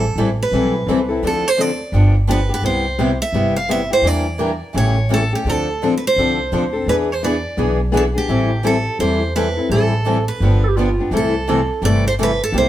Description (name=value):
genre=acoustic string swing (jazz manouche)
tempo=170 BPM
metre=4/4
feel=swing 61% on 8ths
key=A minor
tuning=A4 = 440 Hz
part: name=picked steel-string acoustic guitar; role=melody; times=0.0-12.7 s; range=G4 to F5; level=-20 LUFS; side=right 2 dB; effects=none
part: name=picked steel-string acoustic guitar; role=accompaniment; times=0.0-12.7 s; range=C3 to A4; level=-20 LUFS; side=left 4 dB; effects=none
part: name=picked steel-string acoustic guitar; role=accompaniment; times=0.0-12.7 s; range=C3 to B4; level=-24 LUFS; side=right 3 dB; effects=none
part: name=upright bass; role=bass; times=0.0-12.7 s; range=G1 to E2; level=-20 LUFS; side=equal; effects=none
part: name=breathy clarinet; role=second line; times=10.6-11.1 s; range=F4 to A4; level=-22 LUFS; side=right 4 dB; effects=none
room=moderate stone room reverb, RT60 0.9 s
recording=band playing live in one room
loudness=-15 LUFS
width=side -12 dB against mid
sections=0.0-11.1 A section; 11.1-12.7 B section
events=none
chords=0.0 Am7; 1.2 Dm7; 1.9 G7; 2.6 Cmaj7; 4.0 Em7b5; 4.7 A7; 5.5 Dm7; 6.9 E7; 8.3 Am7; 10.4 G7; 11.1 C6